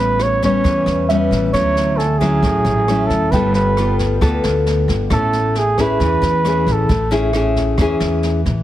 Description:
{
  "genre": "bossa nova",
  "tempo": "134 BPM",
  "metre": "4/4",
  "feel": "straight",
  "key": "A major",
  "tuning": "A4 = 439 Hz",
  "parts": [
    { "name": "mellow flugelhorn", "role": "melody", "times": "0.0-7.1 s", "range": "G#4 to C#5", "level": "-18 LUFS", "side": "right 2 dB", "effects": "none" },
    { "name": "nylon-string guitar", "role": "accompaniment", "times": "0.0-8.6 s", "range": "A2 to A4", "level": "-18 LUFS", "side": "left 2 dB", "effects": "none" },
    { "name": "upright bass", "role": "bass", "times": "0.0-8.6 s", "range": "G1 to E2", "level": "-20 LUFS", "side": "equal", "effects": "none" },
    { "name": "jazz brush drum kit", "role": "drums", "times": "0.2-8.5 s", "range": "kick drum, rim click, snare drum", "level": "-25 LUFS", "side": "equal", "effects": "none" },
    { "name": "warm concert grand piano", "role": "accompaniment", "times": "1.1-5.1 s", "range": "E5 to G#5", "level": "-27 LUFS", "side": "right 5 dB", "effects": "none" }
  ],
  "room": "light reverb",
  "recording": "heavily compressed radio sound",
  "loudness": "-14 LUFS",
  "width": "side -13 dB against mid",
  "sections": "0.0-8.6 A section",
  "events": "none",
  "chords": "0.0 A9; 1.5 Dmaj9; 3.3 G9; 5.1 Amaj7",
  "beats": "0.20 0.65 1.09 | 1.54 1.98 2.43 2.88 | 3.32 3.77 4.21 4.66 | 5.11 5.55 6.00 6.45 | 6.89 7.34 7.79 8.23"
}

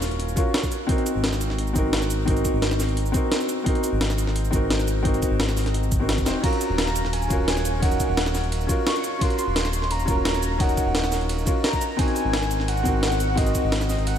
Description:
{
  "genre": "liquid drum and bass",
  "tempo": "173 BPM",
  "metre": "4/4",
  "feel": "straight",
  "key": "unclear",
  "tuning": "A4 = 439 Hz",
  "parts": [
    { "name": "felt-muted upright piano", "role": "accompaniment", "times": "0.0-14.2 s", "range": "C4 to C5", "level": "-26 LUFS", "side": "left 1 dB", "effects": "analog delay" },
    { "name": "smooth gliding synth bass", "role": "bass", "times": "0.0-14.2 s", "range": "Eb1 to Ab1", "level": "-25 LUFS", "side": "equal", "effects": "tube saturation" },
    { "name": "breakbeat sampler-style drum kit", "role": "drums", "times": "0.0-14.2 s", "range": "crash cymbal, hi-hat, ride cymbal, shaker, snare drum", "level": "-27 LUFS", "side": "equal", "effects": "none" },
    { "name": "electronic kick drum", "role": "drums", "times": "0.4-13.6 s", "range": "none", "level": "-24 LUFS", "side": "equal", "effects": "none" },
    { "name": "warm velvety synth lead", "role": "melody", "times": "6.4-14.2 s", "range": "Eb5 to Db6", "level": "-28 LUFS", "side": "equal", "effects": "chorus, ping-pong delay" }
  ],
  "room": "moderate lush hall reverb, RT60 2.2 s",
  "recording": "dreamy mix soaked in reverb",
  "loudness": "-20 LUFS",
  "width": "side -9 dB against mid",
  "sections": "0.0-14.2 A section",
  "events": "drum fill 6.3",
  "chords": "0.0 Ebm7; 0.7 Ab9; 6.4 Ebm7; 11.8 Ab9",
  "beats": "0.20 0.54 | 0.89 1.24 1.58 1.93 | 2.28 2.62 2.97 3.32 | 3.66 4.01 4.36 4.70 | 5.05 5.40 5.75 6.09 | 6.44 6.79 7.13 7.48 | 7.83 8.17 8.52 8.87 | 9.21 9.56 9.91 10.25 | 10.60 10.95 11.29 11.64 | 11.99 12.33 12.68 13.03 | 13.38 13.72 14.07"
}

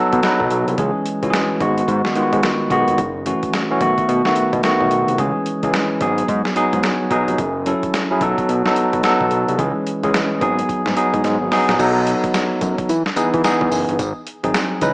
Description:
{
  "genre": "R&B, new jack swing",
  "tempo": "109 BPM",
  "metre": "4/4",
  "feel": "swing 62% on 16ths",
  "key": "unclear",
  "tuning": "A4 = 440 Hz",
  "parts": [
    { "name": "bell-like tine electric piano", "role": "accompaniment", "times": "0.0-14.9 s", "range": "D#3 to D#5", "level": "-17 LUFS", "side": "equal", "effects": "medium stereo tremolo" },
    { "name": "fat analog bass", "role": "bass", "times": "0.0-14.9 s", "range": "E#1 to E3", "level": "-22 LUFS", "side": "equal", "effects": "none" },
    { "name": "boom bap sampler-style drum kit", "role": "drums", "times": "0.1-14.9 s", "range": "crash cymbal, hi-hat, kick drum, snare drum, tambourine", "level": "-23 LUFS", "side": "equal", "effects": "overdrive" }
  ],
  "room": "wet lush hall reverb, RT60 1.6 s, digital ambience",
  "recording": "big arena sound, small speaker sound",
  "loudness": "-15 LUFS",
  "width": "side -28 dB against mid",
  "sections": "0.0-11.8 A section; 11.8-14.9 B section",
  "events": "drum fill 11.2-11.8; tine electric piano fill 14.5-14.9",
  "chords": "0.0 B7; 0.8 C#m; 1.6 G#m7; 3.0 F#m7; 3.8 B7; 5.2 C#m; 6.0 G#m7; 7.4 F#m7; 8.2 B7; 9.6 C#m; 10.4 G#m7; 11.8 B7; 12.9 Emaj7; 14.0 G#7",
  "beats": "0.23 | 0.78 1.33 1.88 2.43 | 2.98 3.53 4.08 4.63 | 5.18 5.74 6.29 6.84 | 7.39 7.94 8.49 9.04 | 9.59 10.14 10.69 11.24 | 11.79 12.34 12.89 13.44 | 13.99 14.54"
}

